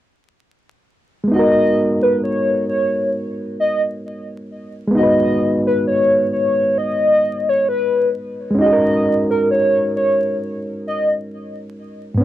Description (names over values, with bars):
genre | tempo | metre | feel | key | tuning
hip hop | 66 BPM | 4/4 | swing 55% on 16ths | G# minor | A4 = 437 Hz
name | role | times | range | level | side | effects
bright reed electric piano | accompaniment | 1.2-12.2 s | G#2 to B4 | -20 LUFS | equal | cassette tape, low-pass filter
warbly nostalgic lead | melody | 1.3-11.1 s | A#4 to D#5 | -17 LUFS | equal | chorus, phaser, low-pass filter, cassette tape, tape echo
room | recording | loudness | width
moderate booth ambience, RT60 0.2 s | home recording on cassette, vinyl crackle | -15 LUFS | side -13 dB against mid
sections
1.3-12.2 A section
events
none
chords
1.3 G#m7; 8.6 F#69/G#